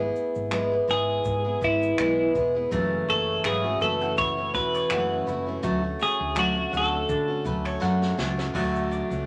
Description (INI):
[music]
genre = acoustic pop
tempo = 82 BPM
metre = 4/4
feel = swing 55% on 16ths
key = unclear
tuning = A4 = 437 Hz
[part]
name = picked steel-string acoustic guitar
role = accompaniment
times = 0.0-9.3 s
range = F#2 to G#4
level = -29 LUFS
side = equal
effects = none
[part]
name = woody fretless electric bass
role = bass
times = 0.0-9.3 s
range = E1 to D3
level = -35 LUFS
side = equal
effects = none
[part]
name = jazz brush drum kit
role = drums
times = 0.2-9.3 s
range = crash cymbal, finger snaps, kick drum, shaker, snare drum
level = -36 LUFS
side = equal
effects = none
[part]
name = twelve-string electric guitar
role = melody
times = 0.9-8.2 s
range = E4 to C#5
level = -28 LUFS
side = equal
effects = none
[part]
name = mandolin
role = arpeggios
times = 2.7-9.3 s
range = A3 to F#5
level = -34 LUFS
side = equal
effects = none
[sound]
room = wet studio ambience, RT60 0.4 s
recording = none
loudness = -25 LUFS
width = mono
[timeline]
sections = 0.0-8.6 A section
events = drum fill 7.8-8.6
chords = 0.0 E/G#; 2.7 F#m7; 5.6 Dmaj7